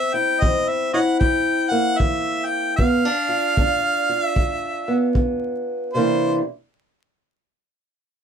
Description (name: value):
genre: acoustic country blues, solo or duo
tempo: 76 BPM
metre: 4/4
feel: swing 62% on 8ths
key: C mixolydian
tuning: A4 = 438 Hz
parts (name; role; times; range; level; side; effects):
- warm harmonica; melody; 0.0-6.4 s; C5 to G5; -22 LUFS; equal; none
- fingerpicked steel-string acoustic guitar; accompaniment; 0.0-6.4 s; G2 to F4; -21 LUFS; right 1 dB; none
- kick drum; drums; 0.4-5.4 s; none; -21 LUFS; equal; none
room: wet booth ambience, RT60 0.2 s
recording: heard from further back in the room, vinyl crackle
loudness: -18 LUFS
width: side -7 dB against mid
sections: 0.0-6.0 A section; 6.0-8.2 B section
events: none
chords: 0.0 C7; 2.8 G7; 6.0 C9